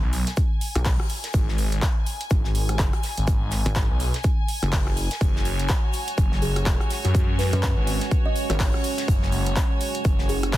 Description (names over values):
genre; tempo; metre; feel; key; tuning
bass house; 124 BPM; 4/4; swing 59% on 16ths; G# minor; A4 = 440 Hz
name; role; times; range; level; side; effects
phased detuned saw bass; bass; 0.0-10.5 s; F#1 to F#2; -24 LUFS; equal; phaser, overdrive, sidechain pumping
warm studio string section; texture; 0.0-10.6 s; F#4 to G#5; -33 LUFS; equal; sidechain pumping
big-room dance drum kit; drums; 0.1-10.6 s; handclaps, hi-hat, rim click; -31 LUFS; equal; none
modern studio drum kit; drums; 0.1-10.6 s; hi-hat, shaker, snare drum; -38 LUFS; left 4 dB; high-pass filter on hats, soft clipping on snare, high-pass filter on snare, high-pass filter on perc, high-pass filter on room
electronic kick drum; drums; 0.4-10.6 s; none; -22 LUFS; equal; none
pulsing pluck wobble bass; bass; 0.8-10.6 s; E1 to F#2; -25 LUFS; equal; chorus, tube saturation, sidechain pumping
deep dark ambient pad; sustained chords; 6.0-10.6 s; G#3 to F#4; -33 LUFS; right 5 dB; chorus, built-in reverb, sidechain pumping
kalimba; melody; 6.4-10.4 s; F#4 to D#5; -32 LUFS; equal; ping-pong delay
room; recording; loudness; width
small room reverb; dense, heavily limited modern master; -20 LUFS; side -15 dB against mid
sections
0.0-10.6 A section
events
none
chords
0.0 G#m; 5.2 F#sus2